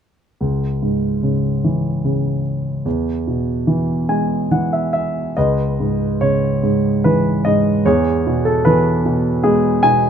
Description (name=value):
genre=classical, lyrical solo piano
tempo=72 BPM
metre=3/4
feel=uneven beats, rubato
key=C# minor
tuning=A4 = 437 Hz
part: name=warm grand piano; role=solo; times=0.4-10.1 s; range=C#2 to G#5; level=-15 LUFS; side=equal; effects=none
room=little or no reverb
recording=close, detailed microphones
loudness=-15 LUFS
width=side -8 dB against mid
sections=0.4-5.4 A section; 5.4-10.1 B section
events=grand piano fill 3.7-5.4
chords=0.4 C#m; 2.9 E; 5.4 C#m7; 7.9 E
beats=| 0.40 1.23 2.04 | 2.85 3.67 4.50 | 5.36 6.21 7.04 | 7.85 8.65 9.44